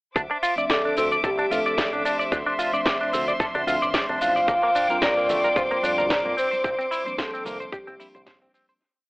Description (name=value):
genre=nu-disco, nu disco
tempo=111 BPM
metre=4/4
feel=swing 54% on 16ths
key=D minor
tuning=A4 = 440 Hz
part: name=clear studio violin section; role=sustained chords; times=0.2-8.8 s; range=C5 to D6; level=-28 LUFS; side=equal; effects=sidechain pumping
part: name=direct-recorded clean electric guitar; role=riff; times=0.2-8.7 s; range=A3 to D5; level=-26 LUFS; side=equal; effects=analog chorus, analog delay
part: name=fingered electric bass with an envelope filter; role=bass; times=0.2-8.5 s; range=G1 to Bb2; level=-34 LUFS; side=equal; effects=none
part: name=electronic kick drum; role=drums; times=0.2-8.4 s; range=none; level=-28 LUFS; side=equal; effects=none
part: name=house drum kit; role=drums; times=0.2-8.8 s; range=hi-hat, shaker, snare drum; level=-29 LUFS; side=equal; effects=analog delay
part: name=mellow tine electric piano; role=accompaniment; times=0.6-8.8 s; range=F3 to E5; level=-32 LUFS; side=equal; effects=medium stereo tremolo, sidechain pumping, analog delay
part: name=soft octave-layered synth lead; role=melody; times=0.7-8.5 s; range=G4 to F5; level=-24 LUFS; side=equal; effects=chorus, tremolo, tape echo
part: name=congas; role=percussion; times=5.3-8.2 s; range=none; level=-44 LUFS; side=equal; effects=analog delay
room=light reverb, digital ambience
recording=echo-heavy mix, telephone sound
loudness=-20 LUFS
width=side -27 dB against mid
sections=0.2-8.8 groove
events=fade-out 5.9-8.8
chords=0.2 Dm9; 4.5 Bb69; 6.4 C9sus4